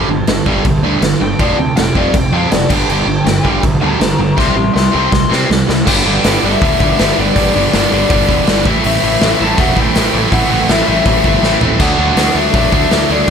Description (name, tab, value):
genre	punk rock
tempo	161 BPM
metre	4/4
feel	straight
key	G major from 5.9 s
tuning	A4 = 441 Hz
part	cranked stack guitar	riff	0.0-13.3 s	F2 to D4	-18 LUFS	left 13 dB	overdrive
part	distorted electric guitar	riff	0.0-13.3 s	F2 to E4	-16 LUFS	right 13 dB	overdrive
part	fuzz picked electric bass	bass	0.0-13.2 s	E1 to C3	-18 LUFS	equal	overdrive
part	raw garage drum kit	drums	0.3-13.3 s	crash cymbal, hi-hat, kick drum, snare drum, splash cymbal, toms	-15 LUFS	equal	none
part	lead guitar through a small cranked amp	melody	1.2-13.3 s	D5 to C6	-18 LUFS	left 5 dB	overdrive
room	little or no reverb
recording	none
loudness	-10 LUFS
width	side -7 dB against mid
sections	0.0-5.9 A section; 5.9-13.3 B section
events	lead electric guitar solo 0.0-5.9; drum fill 4.4-5.9, 11.4-11.8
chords	0.0 G5; 1.4 F5; 2.7 G5; 4.4 C; 5.9 G; 8.7 Am; 11.8 D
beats	0.28 0.65 1.02 | 1.39 1.76 2.14 2.51 | 2.88 3.26 3.63 4.00 | 4.38 4.75 5.12 5.50 | 5.87 6.24 6.61 6.98 | 7.36 7.73 8.10 8.47 | 8.84 9.21 9.58 9.95 | 10.32 10.69 11.06 11.43 | 11.80 12.17 12.54 12.91 | 13.28